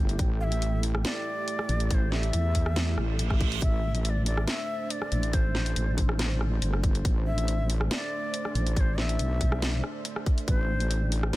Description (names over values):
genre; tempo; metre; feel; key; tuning
deep dubstep; 140 BPM; 4/4; half-time; A minor; A4 = 439 Hz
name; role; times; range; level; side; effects
dark analog pad; sustained chords; 0.0-11.4 s; A3 to C5; -37 LUFS; right 1 dB; chorus
wobble bass; bass; 0.0-11.3 s; G1 to E2; -27 LUFS; equal; chorus, tube saturation
garage drum kit; drums; 0.1-11.4 s; hi-hat, rim click, snare drum; -33 LUFS; equal; soft clipping on snare
electronic kick drum; drums; 0.2-10.6 s; none; -25 LUFS; equal; none
breathy bright ney; melody; 0.4-11.4 s; C5 to F5; -35 LUFS; left 1 dB; dub echo
reverse cymbal; sound effects; 3.0-3.6 s; none; -39 LUFS; right 9 dB; none
room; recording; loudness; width
little or no reverb; dense, heavily limited modern master; -25 LUFS; side -18 dB against mid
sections
0.0-11.4 A section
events
reverse cymbal 3.0-3.6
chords
0.0 Am